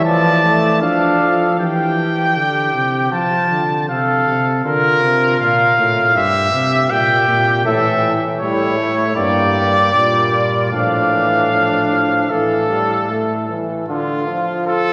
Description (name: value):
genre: classical, imitative canzona for brass ensemble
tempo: 78 BPM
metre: 4/4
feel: straight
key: D minor from 7.7 s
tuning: A4 = 440 Hz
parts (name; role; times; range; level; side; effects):
- clear trumpet; melody; 0.0-14.9 s; A4 to A5; -18 LUFS; equal; none
- mellow trumpet; second line; 0.0-14.9 s; D4 to D5; -24 LUFS; equal; none
- clear trombone; accompaniment; 0.0-1.6, 7.7-14.9 s; D3 to D4; -24 LUFS; equal; none
- mellow bass trombone; bass; 0.0-13.5 s; G2 to F3; -23 LUFS; equal; none
room: wet church reverb, RT60 3.9 s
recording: none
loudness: -16 LUFS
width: mono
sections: 0.0-1.6 A section; 1.6-13.9 B section; 13.9-14.9 C section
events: none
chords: 0.1 Dm; 1.6 C/E; 3.1 F; 4.7 Bb; 6.2 Edim/G; 7.7 A; 9.2 Gm; 10.7 Dm/A; 12.3 A5; 13.9 Dm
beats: 0.05 0.82 | 1.59 2.36 3.13 3.89 | 4.65 5.41 6.16 6.91 | 7.66 8.41 9.17 9.94 | 10.73 11.52 12.31 13.10 | 13.88 14.66